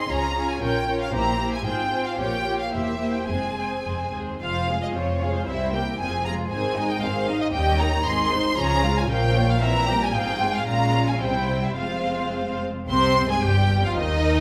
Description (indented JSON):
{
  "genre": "quick classical-period movement for string orchestra",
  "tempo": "105-118 BPM",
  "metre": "2/4",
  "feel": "rubato",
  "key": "F minor",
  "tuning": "A4 = 440 Hz",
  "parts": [
    { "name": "rich studio violin section", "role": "melody", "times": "0.0-14.4 s", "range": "C5 to C6", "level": "-28 LUFS", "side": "equal", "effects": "none" },
    { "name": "warm studio violin section", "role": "second line", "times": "0.0-14.4 s", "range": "Eb4 to Ab5", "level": "-30 LUFS", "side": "equal", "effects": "none" },
    { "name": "dark studio viola section", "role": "accompaniment", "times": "0.0-14.4 s", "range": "Eb3 to F4", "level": "-31 LUFS", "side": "equal", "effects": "none" },
    { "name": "dark studio double bass section", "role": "bass", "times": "0.1-14.4 s", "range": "E1 to Eb2", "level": "-31 LUFS", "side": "equal", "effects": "none" },
    { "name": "rich studio cello section", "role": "bass", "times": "0.1-14.4 s", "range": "C2 to Db3", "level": "-31 LUFS", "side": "equal", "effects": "none" }
  ],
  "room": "wet recital hall reverb, RT60 1.4 s",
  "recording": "recorded in a church or concert hall",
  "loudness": "-23 LUFS",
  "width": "mono",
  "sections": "0.0-4.4 A section; 4.4-12.9 A section; 12.9-14.4 B section",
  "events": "none",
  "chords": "0.1 Db; 0.6 Bbm; 1.1 C7/Bb; 1.7 Fm/Ab; 2.2 Gm7b5/Bb; 2.7 C7/E; 3.3 Fm; 5.5 C7; 6.0 Fm; 6.5 Ab; 7.5 Eb7; 8.1 Ab; 8.6 Db; 9.1 Bbm; 9.6 C7/Bb; 10.1 Fm/Ab; 10.7 Bbm7; 11.2 C; 11.8 Fm; 12.9 Ab/C",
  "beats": "| 0.10 0.62 | 1.14 1.65 | 2.18 2.72 | 3.28 3.85 | 4.41 4.94 | 5.47 5.99 | 6.51 7.02 | 7.54 8.06 | 8.58 9.09 | 9.62 10.14 | 10.67 11.21 | 11.77 12.33 | 12.89 13.43 | 13.96"
}